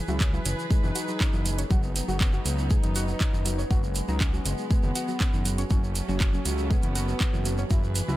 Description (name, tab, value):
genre	melodic techno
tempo	120 BPM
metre	4/4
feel	straight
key	F# dorian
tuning	A4 = 444 Hz
part	expressive synth lead	melody	0.0-8.2 s	E3 to F#4	-35 LUFS	equal	chorus, sidechain pumping, digital delay
part	dark chamber string section	sustained chords	0.0-8.2 s	E3 to B4	-37 LUFS	equal	sidechain pumping
part	deep dark ambient pad	texture	0.0-8.2 s	D#4 to A5	-39 LUFS	equal	chorus, built-in reverb, sidechain pumping
part	soft round pluck	arpeggios	0.1-8.2 s	C#3 to F#5	-35 LUFS	right 1 dB	chorus, sidechain pumping, dub echo
part	fat analog bass	bass	0.1-8.2 s	F#1 to C#2	-29 LUFS	equal	sidechain pumping
part	tube shaker	percussion	0.1-8.2 s	none	-37 LUFS	right 5 dB	none
part	electronic kick drum	drums	0.2-7.8 s	none	-24 LUFS	equal	none
part	house drum kit	drums	0.2-8.1 s	handclaps, hi-hat	-32 LUFS	right 2 dB	none
room	little or no reverb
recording	none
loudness	-23 LUFS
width	side -16 dB against mid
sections	0.0-8.2 A section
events	none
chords	0.0 E/F#; 1.7 G#m7/F#; 5.7 F#m